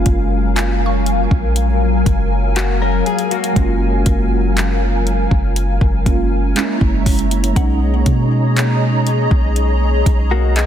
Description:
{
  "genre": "contemporary R&B",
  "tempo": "60 BPM",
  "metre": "4/4",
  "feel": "straight",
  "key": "F# major",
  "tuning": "A4 = 440 Hz",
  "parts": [
    { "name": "mellow tine electric piano", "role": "accompaniment", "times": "0.0-10.7 s", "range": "G#3 to E#4", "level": "-22 LUFS", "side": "right 5 dB", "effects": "ensemble chorus" },
    { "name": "hollow soft pad", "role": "sustained chords", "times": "0.0-10.7 s", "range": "F#3 to A#5", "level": "-21 LUFS", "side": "left 3 dB", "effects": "ensemble chorus" },
    { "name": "soft 808-style bass", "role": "bass", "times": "0.0-10.7 s", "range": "F#1 to B2", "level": "-17 LUFS", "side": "equal", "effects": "none" },
    { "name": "smooth R&B drum kit", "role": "drums", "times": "0.1-10.7 s", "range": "handclaps, hi-hat, kick drum", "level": "-18 LUFS", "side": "equal", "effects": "none" },
    { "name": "mallet-like synth pluck", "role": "texture", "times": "0.6-10.7 s", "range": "D#5 to C#6", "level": "-32 LUFS", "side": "left 2 dB", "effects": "chorus, digital delay" },
    { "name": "direct-recorded clean electric guitar", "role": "arpeggios", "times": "2.6-10.7 s", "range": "A#3 to A#4", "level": "-23 LUFS", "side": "left 8 dB", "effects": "analog chorus, digital delay" }
  ],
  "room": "little or no reverb",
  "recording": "dense, heavily limited modern master",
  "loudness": "-13 LUFS",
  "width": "side -10 dB against mid",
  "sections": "0.0-10.7 A section",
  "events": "none",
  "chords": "0.0 F#maj9; 6.6 F#7; 7.6 Bmaj13",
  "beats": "0.56 1.56 2.56 | 3.56 4.56 5.56 6.56 | 7.56 8.56 9.56 10.56"
}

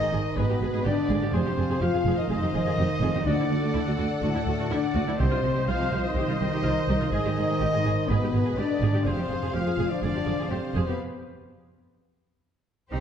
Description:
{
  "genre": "cinematic",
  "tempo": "124 BPM",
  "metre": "4/4",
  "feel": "straight",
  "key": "unclear",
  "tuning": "A4 = 440 Hz",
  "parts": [
    { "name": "dark symphonic violin section", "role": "melody", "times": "0.0-13.0 s", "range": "A4 to F5", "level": "-37 LUFS", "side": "left 5 dB", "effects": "none" },
    { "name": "warm symphonic violin section", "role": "second line", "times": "0.0-13.0 s", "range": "G4 to F#5", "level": "-35 LUFS", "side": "left 4 dB", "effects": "none" },
    { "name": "rich symphonic viola section", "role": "accompaniment", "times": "0.0-13.0 s", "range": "C4 to C5", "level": "-35 LUFS", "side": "equal", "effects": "none" },
    { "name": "mellow French horn section", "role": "sustained chords", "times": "0.0-13.0 s", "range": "G3 to G4", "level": "-30 LUFS", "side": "left 4 dB", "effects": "none" },
    { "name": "mellow trombone section", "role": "sustained chords", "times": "0.0-11.0 s", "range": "A2 to F3", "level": "-32 LUFS", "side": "right 2 dB", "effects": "none" },
    { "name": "clear trumpet", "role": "stabs", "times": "0.0-11.0 s", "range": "A4 to F5", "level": "-34 LUFS", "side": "right 1 dB", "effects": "none" },
    { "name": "rich symphonic cello section", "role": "bass", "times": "0.0-13.0 s", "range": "C2 to G4", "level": "-30 LUFS", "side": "right 2 dB", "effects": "none" },
    { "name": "warm symphonic double bass section", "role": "bass", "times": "0.1-13.0 s", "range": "F1 to D2", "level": "-30 LUFS", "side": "right 2 dB", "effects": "none" },
    { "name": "timpani", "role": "percussion", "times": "5.2-5.9 s", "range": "C3", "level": "-34 LUFS", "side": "equal", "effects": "none" }
  ],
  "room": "wet scoring stage reverb, RT60 1.6 s",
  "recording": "dark, warm production",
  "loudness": "-23 LUFS",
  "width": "side -8 dB against mid",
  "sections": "0.0-12.9 A section",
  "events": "break 11.0-12.9",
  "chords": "0.0 Abm; 1.3 Fm; 3.3 D; 5.2 Cm; 7.1 Abm; 9.1 Fm; 11.0 N.C.",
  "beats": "0.36 0.85 | 1.33 1.81 2.29 2.78 | 3.26 3.74 4.23 4.71 | 5.19 5.67 6.16 6.64 | 7.12 7.61 8.09 8.57 | 9.05 9.54 10.02 10.50 | 10.99 11.47 11.95 12.44 | 12.92"
}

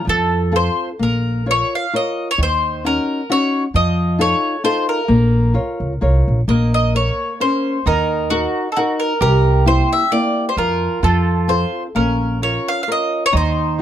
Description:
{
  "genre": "italian folk, Italian serenade",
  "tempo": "132 BPM",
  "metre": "3/4",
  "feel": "swing 54% on 8ths, rubato",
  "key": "Bb harmonic minor",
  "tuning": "A4 = 439 Hz",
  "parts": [
    { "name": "bowl-back mandolin", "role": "melody", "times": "0.0-13.8 s", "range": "Gb4 to F5", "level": "-19 LUFS", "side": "equal", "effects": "none" },
    { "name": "nylon-string guitar", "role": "accompaniment", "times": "0.0-13.8 s", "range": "C3 to Db5", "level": "-21 LUFS", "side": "left 2 dB", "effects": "none" },
    { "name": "upright bass", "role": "bass", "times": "0.1-13.8 s", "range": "Bb1 to F2", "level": "-18 LUFS", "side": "equal", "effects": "none" },
    { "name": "mandolin", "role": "second line", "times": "6.5-13.8 s", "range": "Bb3 to G4", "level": "-24 LUFS", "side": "right 8 dB", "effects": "none" }
  ],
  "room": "light reverb",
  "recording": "dark, warm production",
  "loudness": "-15 LUFS",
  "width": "side -10 dB against mid",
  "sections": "0.0-6.5 A section; 6.5-13.8 A section",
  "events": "none",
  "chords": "0.1 F; 1.0 Bbm; 2.4 Ebm7; 3.7 F7; 5.1 Bbm; 6.5 Bbmadd9; 7.9 Ebm; 9.2 C7; 10.6 Fsus4; 11.0 F; 12.0 Bbm",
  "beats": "0.08 0.54 | 1.01 1.47 1.93 | 2.39 2.84 3.29 | 3.74 4.19 4.64 | 5.09 5.54 6.01 | 6.49 6.95 7.41 | 7.87 8.32 8.77 | 9.21 9.66 10.12 | 10.57 11.03 11.48 | 11.95 12.42 12.88 | 13.34 13.80"
}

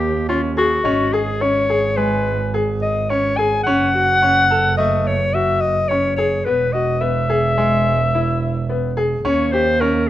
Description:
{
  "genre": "contemporary instrumental, chamber music in an uneven meter",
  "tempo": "107 BPM",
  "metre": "5/4",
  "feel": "straight",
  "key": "unclear",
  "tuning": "A4 = 442 Hz",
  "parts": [
    { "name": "clear clarinet", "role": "melody", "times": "0.0-10.1 s", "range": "E#4 to G#5", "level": "-18 LUFS", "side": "left 2 dB", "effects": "none" },
    { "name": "bright baby grand piano", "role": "arpeggios", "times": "0.0-10.0 s", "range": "G#3 to A4", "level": "-21 LUFS", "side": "left 2 dB", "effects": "none" },
    { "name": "warm double bass", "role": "bass", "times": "0.0-10.1 s", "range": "E1 to D#2", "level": "-22 LUFS", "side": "right 4 dB", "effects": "none" },
    { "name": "celesta", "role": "texture", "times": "0.8-2.7 s", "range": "D#5 to G#5", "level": "-28 LUFS", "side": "left 7 dB", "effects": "none" }
  ],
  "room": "light reverb",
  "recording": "close, detailed microphones",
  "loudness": "-15 LUFS",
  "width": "side -13 dB against mid",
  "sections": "0.0-10.1 A section",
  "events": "none",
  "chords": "0.0 D#7; 0.9 G#sus4; 3.7 F#m; 6.5 E; 9.3 D#7",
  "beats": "0.29 | 0.86 1.42 1.98 2.54 3.10 | 3.66 4.22 4.78 5.34 5.90 | 6.46 7.02 7.58 8.13 8.69 | 9.25 9.81"
}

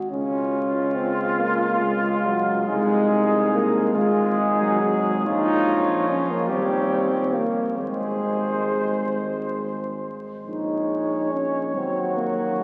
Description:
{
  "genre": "classical, hymn-like piece for brass band",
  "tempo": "44-49 BPM (dotted quarters)",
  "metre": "6/8",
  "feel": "rubato",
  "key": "Db major",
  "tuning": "A4 = 440 Hz",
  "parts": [
    { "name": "clear euphonium", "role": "accompaniment", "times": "0.0-12.6 s", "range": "Gb3 to Gb4", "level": "-26 LUFS", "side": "equal", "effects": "none" },
    { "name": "mellow cornet", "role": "melody", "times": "0.1-12.6 s", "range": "F4 to Db5", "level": "-30 LUFS", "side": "equal", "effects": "none" },
    { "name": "mellow flugelhorn", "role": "second line", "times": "0.1-12.6 s", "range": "Eb4 to Ab4", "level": "-30 LUFS", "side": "equal", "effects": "none" },
    { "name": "warm trombone", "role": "accompaniment", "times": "0.1-12.6 s", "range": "F3 to Ab3", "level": "-33 LUFS", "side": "equal", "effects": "none" },
    { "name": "mellow tuba", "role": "bass", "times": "0.1-12.6 s", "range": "Ab1 to Eb2", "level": "-32 LUFS", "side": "equal", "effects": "none" }
  ],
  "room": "wet cathedral reverb, RT60 5.6 s",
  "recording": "very old 78 rpm record, vinyl crackle",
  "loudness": "-23 LUFS",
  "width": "mono",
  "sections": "0.1-12.6 A section",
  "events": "none",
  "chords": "0.1 Db; 2.7 Ab/C; 5.3 Bbm; 6.5 Eb7; 7.8 Ab; 10.5 Bbm7; 11.8 Ebm7",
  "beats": "| 0.11 1.40 | 2.68 3.94 | 5.26 6.50 | 7.77 9.11 | 10.45 11.75"
}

